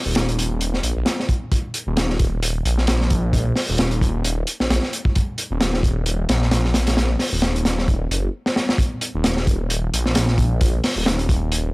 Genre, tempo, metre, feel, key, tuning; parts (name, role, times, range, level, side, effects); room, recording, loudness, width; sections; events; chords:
breakbeat, breaks; 132 BPM; 4/4; swing 56% on 16ths; Eb minor pentatonic; A4 = 440 Hz
phased detuned saw bass; bass; 0.1-11.7 s; Eb1 to Bb1; -21 LUFS; equal; phaser
crunchy breakbeat drum kit; drums; 0.1-11.6 s; hi-hat, kick drum, snare drum; -20 LUFS; equal
little or no reverb; dry, gritty hardware recording; -18 LUFS; side -24 dB against mid
0.0-8.8 A section; 8.8-11.7 B section
drum fill 8.4-8.8; drop 8.8-11.7